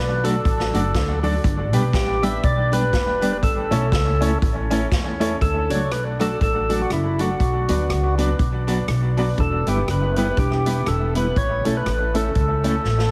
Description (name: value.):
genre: ska.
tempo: 121 BPM.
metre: 4/4.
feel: swing 58% on 8ths.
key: D major.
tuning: A4 = 442 Hz.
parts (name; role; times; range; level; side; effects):
percussive tonewheel organ; melody; 0.0-13.1 s; E4 to E5; -26 LUFS; equal; overdrive, slow rotary speaker.
upright bass; bass; 0.0-13.1 s; E1 to E2; -25 LUFS; equal; none.
mellow electric guitar; accompaniment; 0.2-12.7 s; F#3 to A4; -29 LUFS; equal; tremolo, dub echo.
bright upright piano; stabs; 0.2-12.8 s; A3 to D5; -30 LUFS; equal; dub echo.
swinging big-band drum kit; drums; 0.2-13.1 s; hi-hat, kick drum, rim click, snare drum; -27 LUFS; equal; none.
room: moderate large studio reverb, RT60 1.3 s.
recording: heavily compressed radio sound.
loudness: -21 LUFS.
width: mono.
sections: 0.0-5.4 A section; 5.4-13.1 B section.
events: drum fill 12.9.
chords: 0.0 D; 1.4 G; 3.4 A; 5.4 D; 7.4 Bm; 9.4 Em; 11.4 A.